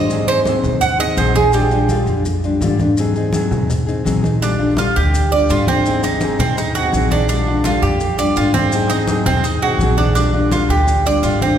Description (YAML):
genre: latin, Cuban son and guajira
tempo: 167 BPM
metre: 4/4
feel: straight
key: Bb major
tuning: A4 = 444 Hz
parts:
  - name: nylon-string guitar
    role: accompaniment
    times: 0.0-11.6 s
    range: D3 to Ab4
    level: -19 LUFS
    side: left 3 dB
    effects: none
  - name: Cuban tres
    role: arpeggios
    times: 0.0-2.2, 4.4-11.6 s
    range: C4 to Gb5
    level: -18 LUFS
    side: right 4 dB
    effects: none
  - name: upright bass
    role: bass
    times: 0.0-11.6 s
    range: Ab1 to Ab2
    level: -19 LUFS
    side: equal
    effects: none
  - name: congas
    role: percussion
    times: 0.1-11.6 s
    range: none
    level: -23 LUFS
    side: left 1 dB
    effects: none
  - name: maracas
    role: percussion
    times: 0.1-11.6 s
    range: none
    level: -33 LUFS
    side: left 4 dB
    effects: none
room: wet church reverb, RT60 2.7 s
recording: recorded in a church or concert hall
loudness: -14 LUFS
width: side -9 dB against mid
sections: 0.0-4.4 A section; 4.4-11.6 B section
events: Cuban tres solo 0.0-4.4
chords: 0.1 Ab7; 1.5 Bb6; 3.0 Ab7; 4.4 Bb6; 5.9 Ab7; 7.3 Bb6; 8.7 Ab7; 10.2 Bb6